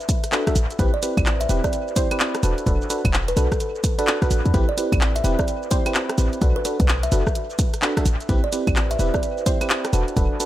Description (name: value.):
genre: UK garage, two-step garage.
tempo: 128 BPM.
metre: 4/4.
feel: swing 63% on 16ths.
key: A dorian.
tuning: A4 = 440 Hz.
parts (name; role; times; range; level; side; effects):
garage drum kit; drums; 0.0-10.5 s; claves, handclaps, hi-hat, rim click, shaker; -26 LUFS; equal; studio reverb, dub echo.
electronic kick drum; drums; 0.1-10.3 s; none; -22 LUFS; equal; overdrive, studio reverb.
FM electric piano; stabs; 0.3-10.5 s; C4 to E5; -26 LUFS; right 1 dB; chorus, phaser, cassette tape, dub echo.
short 808-style bass; bass; 0.6-10.3 s; E1 to E2; -21 LUFS; equal; none.
kalimba; melody; 0.9-9.6 s; A4 to E5; -28 LUFS; right 2 dB; dub echo.
room: light reverb, digital ambience.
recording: echo-heavy mix.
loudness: -18 LUFS.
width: side -14 dB against mid.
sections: 0.0-10.5 A section.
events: none.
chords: 0.0 Bm7; 0.6 Am9; 2.4 E9sus4; 4.5 Am9; 6.4 Bm7; 8.1 Am9; 9.9 E9sus4.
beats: 0.32 | 0.79 1.26 1.73 2.20 | 2.67 3.13 3.60 4.07 | 4.54 5.01 5.48 5.95 | 6.42 6.88 7.35 7.82 | 8.29 8.76 9.23 9.70 | 10.17.